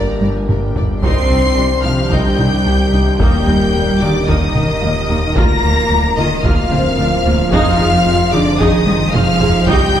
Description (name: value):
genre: cinematic, hybrid orchestral and electronic film score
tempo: 111 BPM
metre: 4/4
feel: straight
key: C minor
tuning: A4 = 440 Hz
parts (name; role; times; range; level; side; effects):
- warm symphonic violin section; melody; 0.0-10.0 s; G5 to C7; -22 LUFS; left 2 dB; none
- warm symphonic violin section; second line; 0.0-10.0 s; Bb4 to C6; -22 LUFS; left 2 dB; none
- warm symphonic viola section; accompaniment; 0.0-10.0 s; F3 to Ab4; -22 LUFS; right 1 dB; none
- chorused pulse-width pad; sustained chords; 0.0-10.0 s; D3 to C5; -23 LUFS; equal; none
- dark French horn section; sustained chords; 0.0-10.0 s; Bb3 to C5; -21 LUFS; left 1 dB; none
- rich chamber cello section; bass; 0.0-10.0 s; G2 to C4; -21 LUFS; right 2 dB; none
- rich symphonic double bass section; bass; 0.0-10.0 s; G1 to F2; -22 LUFS; right 2 dB; none
- wide detuned saw bass; bass; 0.0-10.0 s; D1 to C2; -23 LUFS; equal; chorus
- felt-muted upright piano; texture; 0.0-9.7 s; Bb3 to Eb5; -27 LUFS; left 2 dB; none
- taiko ensemble; drums; 0.2-10.0 s; none; -20 LUFS; equal; none
- smooth gliding synth bass; riff; 1.0-10.0 s; C2 to F3; -20 LUFS; left 1 dB; none
room: wet recital hall reverb, RT60 1.9 s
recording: heard from further back in the room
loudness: -12 LUFS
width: side -10 dB against mid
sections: 0.0-1.0 A section; 1.0-10.0 B section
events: drum fill 0.2-1.0, 8.9-9.7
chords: 0.0 Gm; 1.0 Cmadd9; 3.2 Eb; 5.4 Bb/D; 7.5 Fm7